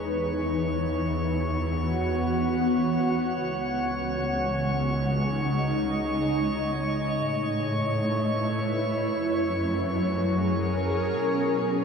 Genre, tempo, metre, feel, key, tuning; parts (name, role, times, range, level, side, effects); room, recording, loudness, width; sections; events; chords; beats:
ambient; free time; A4 = 439 Hz
ethereal airy pad; sustained chords; 0.0-11.8 s; C#3 to F#5; -26 LUFS; equal; ensemble chorus, built-in reverb
dark symphonic cello section; bass; 0.0-11.8 s; C#2 to B2; -31 LUFS; equal
drifting glass-harmonics texture; texture; 0.0-11.2 s; C#5 to C#6; -32 LUFS; equal; chorus, built-in reverb
wet cathedral reverb, RT60 5.6 s; cassette tape, lossy compression artefacts; -24 LUFS; side -6 dB against mid
0.0-11.2 A section
fade-in on synth texture 0.0-11.2; filter sweep on ambient pad 0.0-11.2
0.0 Esus2; 3.4 C#sus2; 7.3 A; 9.2 F#7; 11.2 B5
free time